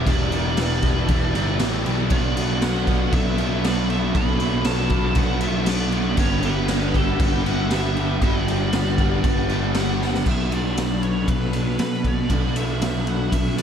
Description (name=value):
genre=rock, shoegaze and dream pop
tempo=118 BPM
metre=4/4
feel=straight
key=B minor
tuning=A4 = 440 Hz
part: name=biting lead guitar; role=melody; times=0.0-13.6 s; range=A4 to B5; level=-30 LUFS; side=right 2 dB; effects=overdrive, diffuse ambient delay
part: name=warm analog pad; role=sustained chords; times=0.0-13.6 s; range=D4 to B5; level=-33 LUFS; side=equal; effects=chorus, phaser
part: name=distorted electric guitar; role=riff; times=0.0-10.2 s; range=E2 to B3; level=-31 LUFS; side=equal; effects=overdrive
part: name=overdriven electric guitar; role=riff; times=0.0-13.6 s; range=E2 to G4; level=-27 LUFS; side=right 9 dB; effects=reverse reverb
part: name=overdriven semi-hollow guitar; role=riff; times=0.0-13.6 s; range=E2 to G4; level=-27 LUFS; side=left 9 dB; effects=wide subtle chorus
part: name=fuzz picked electric bass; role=bass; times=0.0-13.6 s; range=E1 to B2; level=-24 LUFS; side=equal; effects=overdrive
part: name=raw garage drum kit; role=drums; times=0.1-13.6 s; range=crash cymbal, kick drum, ride cymbal, snare drum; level=-24 LUFS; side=equal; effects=none
room=moderate huge ambient reverb, RT60 6.3 s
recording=dreamy mix soaked in reverb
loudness=-19 LUFS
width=side -8 dB against mid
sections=0.0-10.3 A section; 10.3-13.6 B section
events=drum fill 10.0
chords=0.0 Em11; 2.1 Bm7; 6.2 Gmaj7; 10.3 Bm7